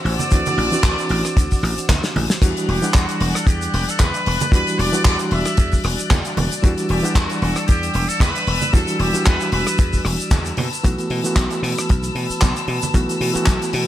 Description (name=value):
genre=nu-disco, nu disco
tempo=114 BPM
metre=4/4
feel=swing 55% on 16ths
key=E minor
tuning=A4 = 444 Hz
part: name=muted trumpet section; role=melody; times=0.0-10.0 s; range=F#4 to E5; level=-25 LUFS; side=right 1 dB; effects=tape echo
part: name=overdriven reed electric piano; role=accompaniment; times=0.0-13.9 s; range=E3 to F#5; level=-24 LUFS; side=right 1 dB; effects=fast tremolo, vintage 12-bit sampler grit, sidechain pumping, ping-pong delay
part: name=dark studio string section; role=sustained chords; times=0.0-13.9 s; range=B4 to F#6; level=-29 LUFS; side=left 5 dB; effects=sidechain pumping
part: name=dry thumbed slap bass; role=bass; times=0.0-13.8 s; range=E1 to B2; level=-23 LUFS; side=equal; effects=none
part: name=damped 70s drum kit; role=drums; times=0.1-13.8 s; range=crash cymbal, handclaps, hi-hat, rim click, shaker, snare drum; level=-24 LUFS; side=left 1 dB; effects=none
part: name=congas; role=percussion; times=0.2-12.9 s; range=none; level=-27 LUFS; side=right 4 dB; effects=none
part: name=kick drum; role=drums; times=0.3-13.6 s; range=none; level=-16 LUFS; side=equal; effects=none
room=studio reverb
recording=none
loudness=-16 LUFS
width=side -13 dB against mid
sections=0.0-13.9 A section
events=drum fill 1.9-2.4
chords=0.0 D9; 2.4 Em9; 10.6 B7sus4